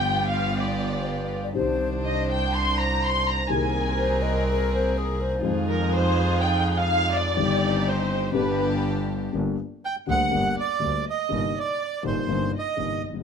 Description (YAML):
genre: tango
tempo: 123 BPM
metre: 4/4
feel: rubato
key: C minor, G harmonic minor from 9.3 s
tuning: A4 = 440 Hz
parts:
  - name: dark studio violin section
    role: second line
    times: 0.0-13.0 s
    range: Bb4 to C6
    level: -27 LUFS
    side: equal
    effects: none
  - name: dark upright piano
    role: accompaniment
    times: 0.0-13.2 s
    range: F#1 to Ab4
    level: -28 LUFS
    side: left 6 dB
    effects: none
  - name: rich chamber string section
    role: stabs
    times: 0.0-9.3 s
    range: B3 to C5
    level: -30 LUFS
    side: right 1 dB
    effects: none
  - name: clear double bass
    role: bass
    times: 0.0-13.2 s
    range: G1 to F2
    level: -27 LUFS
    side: right 2 dB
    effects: none
  - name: mellow hollow concert flute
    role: second line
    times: 1.0-5.6 s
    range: Ab4 to Eb5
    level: -28 LUFS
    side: left 4 dB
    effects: none
  - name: bandoneon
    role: melody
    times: 9.9-13.0 s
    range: C5 to G5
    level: -27 LUFS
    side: right 6 dB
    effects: none
room: moderate large studio reverb, RT60 1.0 s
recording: minimal, uncompressed stereo recording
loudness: -22 LUFS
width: side -6 dB against mid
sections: 0.0-9.3 A section; 9.3-13.2 B section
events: violin section solo 0.0-9.3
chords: 0.0 G7; 1.6 Cmadd9; 3.5 Abadd9/C; 5.4 Fm7; 7.4 Cm/G; 8.3 G; 9.3 Gm; 11.3 Cm7/G